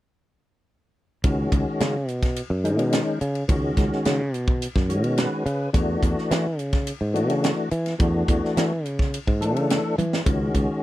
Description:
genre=electric jazz fusion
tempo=106 BPM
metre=4/4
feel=straight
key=unclear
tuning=A4 = 443 Hz
part: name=tonewheel organ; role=accompaniment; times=1.2-10.8 s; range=D#3 to B4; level=-24 LUFS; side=left 2 dB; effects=slow rotary speaker, chorus vibrato
part: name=sustaining fretless electric bass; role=bass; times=1.2-10.7 s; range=C#2 to E3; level=-25 LUFS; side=equal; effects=none
part: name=tight funk drum kit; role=drums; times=1.2-10.7 s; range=hi-hat, kick drum, ride cymbal, snare drum, toms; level=-24 LUFS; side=equal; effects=none
room=little or no reverb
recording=none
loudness=-21 LUFS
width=side -15 dB against mid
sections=1.2-10.8 A section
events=tonewheel organ fill 4.9-5.7; drum fill 10.0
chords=1.2 C#9sus4; 5.7 E9sus4; 10.3 C#sus4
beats=| 1.24 1.80 2.36 2.92 | 3.49 4.05 4.61 5.18 | 5.74 6.30 6.87 7.43 | 8.00 8.56 9.13 9.69 | 10.26 10.82

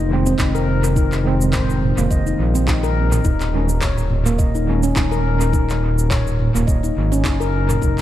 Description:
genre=organic downtempo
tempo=105 BPM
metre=4/4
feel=swing 56% on 16ths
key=Eb dorian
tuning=A4 = 440 Hz
part: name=handpan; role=arpeggios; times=0.0-8.0 s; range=Bb3 to Eb5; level=-22 LUFS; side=left 2 dB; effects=dub echo
part: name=smooth gliding synth bass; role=bass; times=0.0-8.0 s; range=Eb1 to Bb1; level=-19 LUFS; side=equal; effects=sidechain pumping
part: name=tine electric piano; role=accompaniment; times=0.1-5.8 s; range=Eb3 to Db4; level=-25 LUFS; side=right 2 dB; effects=overdrive, fast stereo tremolo, sidechain pumping, dub echo
part: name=organic electronic drum kit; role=drums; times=0.3-8.0 s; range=handclaps, shaker, toms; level=-26 LUFS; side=right 2 dB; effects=dub echo
part: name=electronic kick drum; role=drums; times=0.4-7.9 s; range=none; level=-20 LUFS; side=equal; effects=none
room=light reverb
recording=echo-heavy mix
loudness=-16 LUFS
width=side -13 dB against mid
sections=0.0-8.0 A section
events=none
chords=0.0 Fm; 3.2 Eb7(no3)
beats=0.39 | 0.96 1.53 2.10 2.68 | 3.25 3.82 4.39 4.96 | 5.53 6.10 6.68 7.25 | 7.82

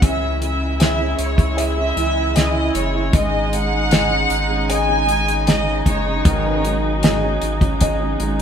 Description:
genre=pop ballad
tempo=77 BPM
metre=4/4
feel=straight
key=unclear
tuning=A4 = 436 Hz
part: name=warm studio violin section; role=melody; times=0.0-6.6 s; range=B4 to G#5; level=-22 LUFS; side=equal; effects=none
part: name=clear concert grand piano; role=accompaniment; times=0.0-8.4 s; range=D#3 to E5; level=-26 LUFS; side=left 2 dB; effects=none
part: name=dark studio string section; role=sustained chords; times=0.0-8.4 s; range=C#3 to E4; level=-25 LUFS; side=left 1 dB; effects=none
part: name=fingerpicked steel-string acoustic guitar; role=arpeggios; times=0.0-8.4 s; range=G#2 to G#4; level=-26 LUFS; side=right 5 dB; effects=none
part: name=saturated sub bass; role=bass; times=0.0-8.4 s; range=F#1 to C#2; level=-23 LUFS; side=equal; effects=none
part: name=damped 70s drum kit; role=drums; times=0.0-8.4 s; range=hi-hat, kick drum, snare drum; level=-18 LUFS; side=equal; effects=none
room=moderate stone room reverb, RT60 1.4 s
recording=band playing live in one room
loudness=-16 LUFS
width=side -8 dB against mid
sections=0.0-8.4 A section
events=none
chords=0.0 C#m; 3.1 G#sus4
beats=| 0.02 0.80 1.58 2.36 | 3.14 3.92 4.70 5.47 | 6.25 7.03 7.81

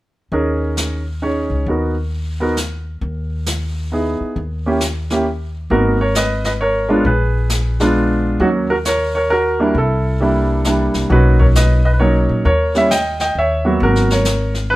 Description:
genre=jazz piano trio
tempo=134 BPM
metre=3/4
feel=swing 65% on 8ths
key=unclear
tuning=A4 = 441 Hz
part: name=clear grand piano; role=melody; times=0.3-14.8 s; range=F#3 to G5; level=-16 LUFS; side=right 1 dB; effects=none
part: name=upright bass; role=bass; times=0.3-14.8 s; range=G#1 to A#2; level=-18 LUFS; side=equal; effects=none
part: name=jazz brush drum kit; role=drums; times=0.3-14.8 s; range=brushed snare drum, hi-hat, kick drum, snare drum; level=-24 LUFS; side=left 2 dB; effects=none
room=light reverb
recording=none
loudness=-14 LUFS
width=side -17 dB against mid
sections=0.3-5.7 A section; 5.7-14.8 B section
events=none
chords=0.3 D#7sus4; 1.7 D#m; 5.7 G#madd9; 7.0 A#7b9; 8.4 D#m7; 9.7 C9; 11.1 Bmaj9; 12.4 D#7b9; 13.8 G#m9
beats=| 0.32 0.77 1.22 | 1.67 2.11 2.56 | 3.01 3.46 3.91 | 4.36 4.80 5.25 | 5.70 6.15 6.60 | 7.05 7.50 7.95 | 8.39 8.85 9.29 | 9.74 10.20 10.64 | 11.10 11.55 12.00 | 12.45 12.90 13.35 | 13.80 14.25 14.70

